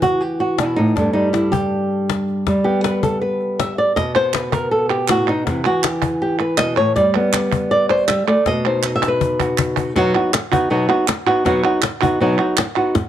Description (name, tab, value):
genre	flamenco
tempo	160 BPM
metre	4/4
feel	straight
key	B phrygian dominant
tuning	A4 = 441 Hz
part	flamenco guitar	melody	0.0-13.0 s	G2 to E5	-16 LUFS	equal	none
part	cajon	percussion	0.0-13.1 s	none	-24 LUFS	left 7 dB	none
part	palmas hand claps	percussion	4.2-12.9 s	none	-24 LUFS	right 14 dB	none
room	light reverb, small room ambience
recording	1960s-style stereo with parts hard left and right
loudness	-15 LUFS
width	side -11 dB against mid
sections	0.0-10.0 A section; 10.0-13.1 B section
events	nylon-string guitar solo 0.0-10.0; drum fill 8.8-10.0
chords	0.0 C (rootless); 1.0 Gadd9; 4.0 A(b5, no3); 5.5 C (rootless); 7.0 G; 8.5 B